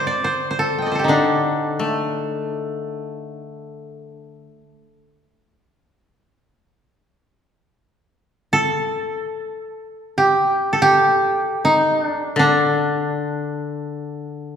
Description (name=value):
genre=japanese traditional, Japanese chamber music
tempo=free time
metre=none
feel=none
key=D in sen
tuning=A4 = 440 Hz
part: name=koto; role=melody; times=0.0-4.1, 8.5-14.6 s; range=D4 to G5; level=-18 LUFS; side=right 1 dB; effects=none
part: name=koto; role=accompaniment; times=0.0-4.6, 12.4-14.6 s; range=D3 to A3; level=-23 LUFS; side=left 4 dB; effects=none
room=wet concert hall reverb, RT60 1.8 s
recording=recorded in a church or concert hall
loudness=-17 LUFS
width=side -8 dB against mid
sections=0.0-6.8 A section; 6.8-14.6 A section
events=slowing down 12.6-14.6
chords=none